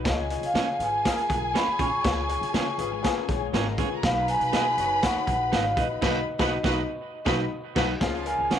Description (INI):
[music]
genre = uptempo 1960s-style soul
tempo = 121 BPM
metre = 4/4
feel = straight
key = Db mixolydian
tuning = A4 = 442 Hz
[part]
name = clear baby grand piano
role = accompaniment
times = 0.0-8.6 s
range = Db4 to Db5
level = -33 LUFS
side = left 13 dB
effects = none
[part]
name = vibraphone with medium mallets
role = melody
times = 0.1-8.6 s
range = Eb5 to Db6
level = -27 LUFS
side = right 1 dB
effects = tape echo
[part]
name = warm studio string section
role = second line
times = 0.1-8.6 s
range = Db4 to Cb6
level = -33 LUFS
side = left 2 dB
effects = none
[part]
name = upright bass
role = bass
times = 0.1-8.6 s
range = Gb1 to Db3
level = -33 LUFS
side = right 1 dB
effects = none
[part]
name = raw garage drum kit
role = drums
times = 0.1-8.6 s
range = crash cymbal, hi-hat, kick drum, snare drum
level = -28 LUFS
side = equal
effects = none
[part]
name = clear horn section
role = second line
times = 0.5-8.6 s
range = Eb3 to Ab4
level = -38 LUFS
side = left 1 dB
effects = none
[part]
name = clean electric guitar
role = stabs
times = 0.5-8.6 s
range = Db4 to Eb5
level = -33 LUFS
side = right 13 dB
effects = tape echo
[part]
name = semi-hollow electric guitar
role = riff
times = 2.9-4.0, 7.8-7.9 s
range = Gb3 to Bb4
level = -35 LUFS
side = left 13 dB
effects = ensemble chorus
[sound]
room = moderate spring reverb, RT60 2.0 s, small room ambience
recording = 1960s-style stereo with parts hard left and right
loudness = -23 LUFS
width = side -9 dB against mid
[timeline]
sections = 0.0-8.0 A section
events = band accent 6.0-8.0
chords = 0.1 Db; 4.0 Cb; 8.0 Db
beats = | 0.06 0.55 1.05 1.55 | 2.05 2.54 3.04 3.54 | 4.04 4.53 5.03 5.53 | 6.03 6.52 7.02 7.52 | 8.02 8.52